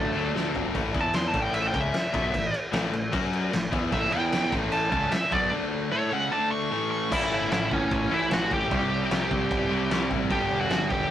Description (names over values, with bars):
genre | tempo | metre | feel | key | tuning
punk rock | 151 BPM | 4/4 | straight | A major | A4 = 441 Hz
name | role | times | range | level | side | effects
smooth overdriven lead guitar | melody | 0.0-11.1 s | A3 to C#6 | -27 LUFS | equal | none
cranked stack guitar | riff | 0.0-11.1 s | G2 to A4 | -30 LUFS | left 5 dB | overdrive
sludgy distorted guitar | riff | 0.0-0.7, 3.9-11.1 s | G2 to A4 | -31 LUFS | right 4 dB | overdrive
growling picked electric bass | bass | 0.0-11.1 s | E1 to F#2 | -32 LUFS | equal | overdrive
loose indie drum kit | drums | 0.4-11.0 s | crash cymbal, kick drum, snare drum, toms | -29 LUFS | equal | none
room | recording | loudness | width
light reverb | rough rehearsal-room recording | -23 LUFS | side -11 dB against mid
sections
0.7-7.1 A section; 7.1-11.1 B section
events
drum fill 0.3-0.7; lead electric guitar solo 0.7-7.1; break 5.5-7.1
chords
0.0 D; 0.7 A5; 0.9 E5; 1.3 A; 3.1 F#5; 3.5 A5; 4.1 E5; 4.5 A; 5.5 D5; 5.9 A; 6.3 D5; 6.7 A; 8.7 C; 10.3 G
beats
0.35 | 0.74 1.14 1.54 1.94 | 2.34 2.73 3.13 3.53 | 3.93 4.33 4.72 5.12 | 5.52 5.92 6.32 6.71 | 7.11 7.51 7.91 8.31 | 8.71 9.10 9.50 9.90 | 10.30 10.70 11.10